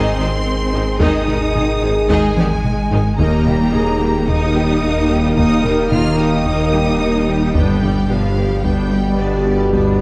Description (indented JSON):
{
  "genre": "cinematic, hybrid orchestral and electronic film score",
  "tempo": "110 BPM",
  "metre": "4/4",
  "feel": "straight",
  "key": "unclear",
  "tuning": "A4 = 440 Hz",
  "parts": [
    { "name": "warm symphonic violin section", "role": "melody", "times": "0.0-10.0 s", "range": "D5 to F6", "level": "-29 LUFS", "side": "equal", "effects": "none" },
    { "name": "rich studio violin section", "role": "second line", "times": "0.0-10.0 s", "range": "Eb4 to G5", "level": "-31 LUFS", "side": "equal", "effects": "none" },
    { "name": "rich symphonic viola section", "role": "accompaniment", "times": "0.0-10.0 s", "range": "Eb3 to Eb4", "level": "-26 LUFS", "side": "equal", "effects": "none" },
    { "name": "warm French horn section", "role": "sustained chords", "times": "0.0-10.0 s", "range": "Ab3 to Bb4", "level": "-27 LUFS", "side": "equal", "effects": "none" },
    { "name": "warm trombone section", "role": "sustained chords", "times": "0.0-10.0 s", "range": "B2 to Bb3", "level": "-27 LUFS", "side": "equal", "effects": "none" },
    { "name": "soft round pluck", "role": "arpeggios", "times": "0.0-9.9 s", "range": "Eb3 to Ab4", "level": "-30 LUFS", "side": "equal", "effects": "none" },
    { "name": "mellow tuba", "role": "bass", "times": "0.0-10.0 s", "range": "G1 to Eb2", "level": "-25 LUFS", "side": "equal", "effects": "none" },
    { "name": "rich symphonic cello section", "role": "bass", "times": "0.0-10.0 s", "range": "D3 to F4", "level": "-25 LUFS", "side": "equal", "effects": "none" },
    { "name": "warm sub bass", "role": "bass", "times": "0.0-10.0 s", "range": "Eb1 to Ab1", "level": "-26 LUFS", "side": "equal", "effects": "none" },
    { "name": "felt-muted upright piano", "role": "texture", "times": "0.0-10.0 s", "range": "G3 to F5", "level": "-32 LUFS", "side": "equal", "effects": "none" },
    { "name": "clear symphonic double bass section", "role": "bass", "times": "0.2-10.0 s", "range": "Ab1 to G2", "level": "-25 LUFS", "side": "equal", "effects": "none" },
    { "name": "taiko ensemble", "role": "drums", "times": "1.0-10.0 s", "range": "none", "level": "-24 LUFS", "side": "equal", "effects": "none" }
  ],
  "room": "moderate concert hall reverb, RT60 2.3 s",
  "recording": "dark, warm production",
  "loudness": "-16 LUFS",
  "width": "mono",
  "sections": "0.0-10.0 A section",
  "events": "drum fill 2.4-3.2",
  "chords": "0.0 Ab; 3.2 Eb; 7.5 G"
}